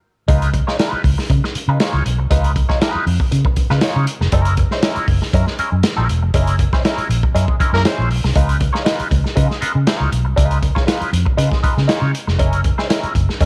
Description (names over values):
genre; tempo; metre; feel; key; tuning
funk; 119 BPM; 4/4; straight; unclear; A4 = 439 Hz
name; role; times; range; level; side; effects
twangy electric guitar; accompaniment; 0.3-13.5 s; Ab3 to Db5; -24 LUFS; equal; wah
vintage muted fingered electric bass; bass; 0.3-13.5 s; Fb1 to Db3; -19 LUFS; equal; none
crunchy breakbeat drum kit; drums; 0.3-13.5 s; hi-hat, kick drum, snare drum; -20 LUFS; equal; none
mellow horn section; second line; 7.7-7.8 s; Bb3 to Bb4; -23 LUFS; equal; none
room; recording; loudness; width
studio reverb; none; -17 LUFS; mono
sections
0.3-13.5 A section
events
stop 0.0; band accent 6.3-8.4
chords
0.3 Db9; 4.3 Gb9; 8.4 Db9; 12.4 Gb9